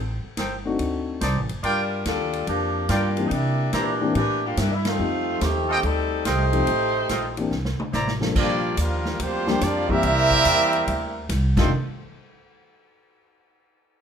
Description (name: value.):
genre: jazz, big band swing.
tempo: 143 BPM.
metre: 4/4.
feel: swing 66% on 8ths.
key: F mixolydian.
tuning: A4 = 442 Hz.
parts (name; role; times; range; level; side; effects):
upright bass; bass; 0.0-11.7 s; F1 to C3; -26 LUFS; equal; none.
warm trumpet section; stabs; 0.4-8.1 s; Eb4 to Bb5; -27 LUFS; right 1 dB; none.
swinging big-band drum kit; drums; 0.4-11.6 s; crash cymbal, hi-hat, kick drum, ride cymbal, snare drum, toms; -29 LUFS; equal; none.
dark baby grand piano; accompaniment; 0.7-11.7 s; Eb3 to A4; -27 LUFS; left 4 dB; none.
mellow saxophone section; melody; 1.7-7.5 s; Eb3 to C5; -24 LUFS; equal; none.
clear trumpet section; melody; 8.4-11.7 s; G3 to C6; -22 LUFS; right 2 dB; none.
warm trombone section; second line; 8.4-11.7 s; F2 to E4; -27 LUFS; right 2 dB; none.
room: light reverb.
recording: minimal, uncompressed stereo recording.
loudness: -20 LUFS.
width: side -7 dB against mid.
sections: 0.0-8.4 A section; 8.4-11.7 B section; 11.7-13.4 C section.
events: band accent 4.8; drum fill 7.5-8.4.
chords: 0.0 Am7b5; 0.8 D7b9; 1.6 Gm7; 3.3 C9; 5.0 F9; 7.5 C9; 8.4 Bb6; 10.0 C7; 11.5 F13; 11.7 N.C..